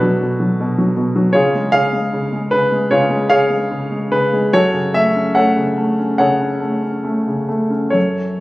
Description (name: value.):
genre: classical, lyrical solo piano.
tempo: 66-80 BPM.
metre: 4/4.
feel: rubato.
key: F# minor.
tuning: A4 = 440 Hz.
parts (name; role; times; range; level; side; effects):
warm grand piano; solo; 0.0-8.4 s; F#2 to F#5; -14 LUFS; equal; none.
room: light reverb.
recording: recorded on a phone in the room, studio reverb, compression.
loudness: -14 LUFS.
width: side -18 dB against mid.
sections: 0.0-8.0 A section.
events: none.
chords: 0.0 Bm; 1.3 C#; 4.5 F#m.